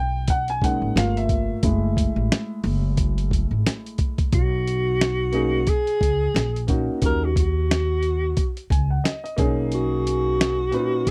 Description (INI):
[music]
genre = hip hop, jazz-hop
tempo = 89 BPM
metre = 4/4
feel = swing 58% on 16ths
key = B major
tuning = A4 = 445 Hz
[part]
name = dark grand piano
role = accompaniment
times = 0.0-11.1 s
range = A#2 to G#5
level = -28 LUFS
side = equal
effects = none
[part]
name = upright bass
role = bass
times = 0.0-10.7 s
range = F#1 to D#2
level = -26 LUFS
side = equal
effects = none
[part]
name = dusty soul sampler-style drum kit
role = drums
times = 0.3-11.1 s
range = hi-hat, kick drum, snare drum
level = -25 LUFS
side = equal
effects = none
[part]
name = breathy alto saxophone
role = melody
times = 4.3-11.1 s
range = F#4 to A#4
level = -26 LUFS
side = equal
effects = none
[sound]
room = little or no reverb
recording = dry, close 1970s-style studio recording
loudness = -22 LUFS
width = mono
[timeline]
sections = 0.0-4.3 A section; 4.3-11.1 B section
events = grand piano solo 0.0-4.3; grand piano fill 8.4-9.7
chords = 0.0 Bmaj13; 1.0 Gm7; 1.6 F#m7; 4.3 Bmaj13; 6.4 F#69/A#; 7.0 D#m7; 9.4 Bmaj13